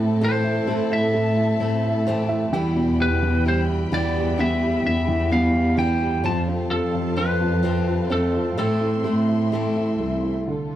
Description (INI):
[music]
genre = pop ballad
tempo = 65 BPM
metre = 4/4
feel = straight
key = A minor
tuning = A4 = 440 Hz
[part]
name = warm upright piano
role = accompaniment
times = 0.0-10.8 s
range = B2 to G5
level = -25 LUFS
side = right 1 dB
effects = none
[part]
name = warm studio string section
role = sustained chords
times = 0.0-10.8 s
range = D2 to C6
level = -31 LUFS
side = right 1 dB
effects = none
[part]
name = picked steel-string acoustic guitar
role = arpeggios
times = 0.0-10.8 s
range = E2 to F4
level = -30 LUFS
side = left 3 dB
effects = none
[part]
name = dark studio cello section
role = bass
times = 0.0-10.4 s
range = C2 to A2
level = -23 LUFS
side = equal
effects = none
[part]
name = lightly driven lead guitar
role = melody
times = 0.2-10.0 s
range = A4 to A5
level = -26 LUFS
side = left 1 dB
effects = none
[sound]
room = light reverb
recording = dry, close 1970s-style studio recording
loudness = -19 LUFS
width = side -12 dB against mid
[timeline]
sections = 0.0-10.5 A section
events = upright piano fill 1.6-3.0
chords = 0.0 Am; 2.5 Em; 6.2 F; 8.6 Am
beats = 0.22 1.14 2.07 | 3.00 3.92 4.84 5.77 | 6.70 7.63 8.57 9.53 | 10.47